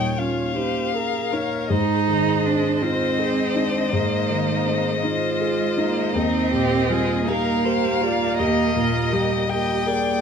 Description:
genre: classical, slow romantic movement for piano quintet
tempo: 54 BPM (dotted quarters)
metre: 12/8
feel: rubato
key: Eb major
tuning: A4 = 440 Hz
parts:
  - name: warm violin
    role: melody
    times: 0.0-10.2 s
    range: Eb5 to G5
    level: -26 LUFS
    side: left 8 dB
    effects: none
  - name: warm cello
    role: second line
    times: 0.0-10.2 s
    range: G3 to Eb4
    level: -24 LUFS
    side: right 7 dB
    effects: none
  - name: warm violin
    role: second line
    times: 0.0-10.2 s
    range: G4 to Eb5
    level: -29 LUFS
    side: left 3 dB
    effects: none
  - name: dark baby grand piano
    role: accompaniment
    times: 0.0-10.2 s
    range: Eb2 to Bb4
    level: -24 LUFS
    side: left 2 dB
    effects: none
  - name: warm viola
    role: accompaniment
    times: 0.0-10.2 s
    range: D4 to Bb4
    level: -28 LUFS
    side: right 5 dB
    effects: none
room: moderate large studio reverb, RT60 0.8 s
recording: minimal, uncompressed stereo recording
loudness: -19 LUFS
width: side -6 dB against mid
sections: 0.0-10.2 A section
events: none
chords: 0.0 Eb7; 1.7 Ab; 6.2 Eb

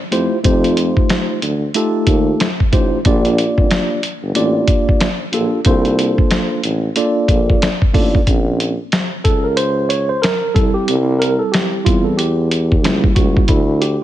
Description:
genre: hip hop, jazz-hop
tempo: 92 BPM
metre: 4/4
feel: swing 61% on 16ths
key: unclear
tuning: A4 = 438 Hz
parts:
  - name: mellow tine electric piano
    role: accompaniment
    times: 0.1-14.0 s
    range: G3 to D5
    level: -18 LUFS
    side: right 1 dB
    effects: fast stereo tremolo
  - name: warm tuba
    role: bass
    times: 0.1-14.0 s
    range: F1 to F2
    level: -18 LUFS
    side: equal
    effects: none
  - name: lo-fi sampler-style drum kit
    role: drums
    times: 0.1-14.0 s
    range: hi-hat, kick drum, snare drum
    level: -16 LUFS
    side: equal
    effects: none
room: light reverb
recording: nothing above 10.9 kHz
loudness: -13 LUFS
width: side -13 dB against mid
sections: 0.0-8.3 A section; 8.3-14.0 B section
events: tine electric piano solo 8.3-14.0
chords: 0.4 F9; 3.1 Bb6; 5.7 C13sus4; 8.3 Bbmadd9; 10.6 C6; 12.8 C#dim7; 13.5 Dsus2

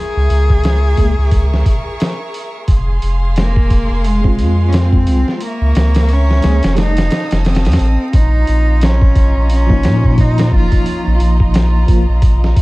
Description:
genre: trip hop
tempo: 88 BPM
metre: 4/4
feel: swing 59% on 16ths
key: F harmonic minor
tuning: A4 = 440 Hz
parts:
  - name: rich cello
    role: melody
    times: 0.0-11.2 s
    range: Ab3 to Ab4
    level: -21 LUFS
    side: equal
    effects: vintage 12-bit sampler grit, tape echo
  - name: clear studio violin section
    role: sustained chords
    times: 0.0-12.6 s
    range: F4 to Eb6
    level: -27 LUFS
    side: right 1 dB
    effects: none
  - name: warm sub bass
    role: bass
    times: 0.2-12.5 s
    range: F1 to Bb2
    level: -13 LUFS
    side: equal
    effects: none
  - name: trip hop sampler-style drum kit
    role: drums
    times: 0.3-12.6 s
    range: hi-hat, kick drum, snare drum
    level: -15 LUFS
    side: equal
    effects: none
  - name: tine electric piano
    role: accompaniment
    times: 1.0-12.0 s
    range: F3 to Ab4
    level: -22 LUFS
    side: equal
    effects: medium stereo tremolo, tape echo
room: digital ambience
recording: echo-heavy mix, vinyl crackle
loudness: -11 LUFS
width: side -21 dB against mid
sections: 0.0-8.1 A section; 8.1-12.6 B section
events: none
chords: 0.0 Dbm6; 2.7 Fm; 5.4 Dbm6; 6.8 F7; 8.1 Bbsus4

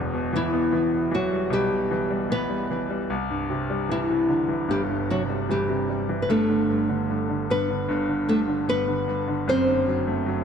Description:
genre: pop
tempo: 76 BPM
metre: 4/4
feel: straight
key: G major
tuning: A4 = 442 Hz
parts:
  - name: bright concert grand piano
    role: accompaniment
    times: 0.0-10.4 s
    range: E1 to B3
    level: -25 LUFS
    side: right 1 dB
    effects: none
  - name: nylon-string guitar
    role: melody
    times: 0.4-10.4 s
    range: E3 to C5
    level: -24 LUFS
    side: left 1 dB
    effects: none
room: moderate lush hall reverb, RT60 2.9 s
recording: dark, warm production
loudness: -22 LUFS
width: side -7 dB against mid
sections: 0.0-10.4 A section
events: none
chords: 0.0 Emadd9; 3.1 Cadd9; 6.3 G; 9.5 D/F#

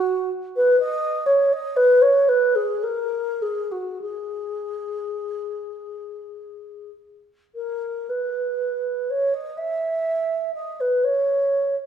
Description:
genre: classical, free, expressive piece for unaccompanied alto flute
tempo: 30-44 BPM (dotted quarters)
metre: 6/8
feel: rubato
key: unclear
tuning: A4 = 440 Hz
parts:
  - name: mellow wooden-headed alto flute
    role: solo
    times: 0.0-11.7 s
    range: F#4 to E5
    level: -20 LUFS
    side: right 1 dB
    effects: none
room: moderate recital hall reverb, RT60 1.6 s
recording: recorded in a church or concert hall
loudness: -20 LUFS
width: side -8 dB against mid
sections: 0.0-11.9 A section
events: none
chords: none

